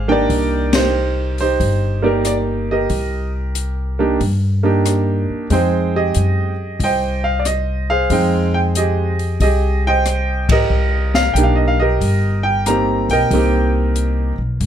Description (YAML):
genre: jazz piano trio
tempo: 92 BPM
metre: 4/4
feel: swing 67% on 8ths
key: C minor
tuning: A4 = 440 Hz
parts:
  - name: clear baby grand piano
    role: melody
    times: 0.0-14.4 s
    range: Ab3 to Bb5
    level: -18 LUFS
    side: right 2 dB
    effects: none
  - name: upright bass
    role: bass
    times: 0.0-14.7 s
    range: G1 to G2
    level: -18 LUFS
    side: left 1 dB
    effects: none
  - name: open jazz drum kit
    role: drums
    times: 0.3-14.7 s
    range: hi-hat, kick drum, ride cymbal, rim click, snare drum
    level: -22 LUFS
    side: left 3 dB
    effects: none
room: light reverb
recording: dark, warm production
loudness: -15 LUFS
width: side -9 dB against mid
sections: 0.0-14.7 A section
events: band accent 0.6-1.0, 10.4-10.7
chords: 0.3 Cm9; 5.5 Fm9; 10.7 Cm7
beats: | 0.30 0.95 1.60 2.25 | 2.91 3.56 4.21 4.86 | 5.51 6.16 6.81 7.46 | 8.11 8.76 9.41 10.06 | 10.71 11.36 12.01 12.66 | 13.30 13.96 14.61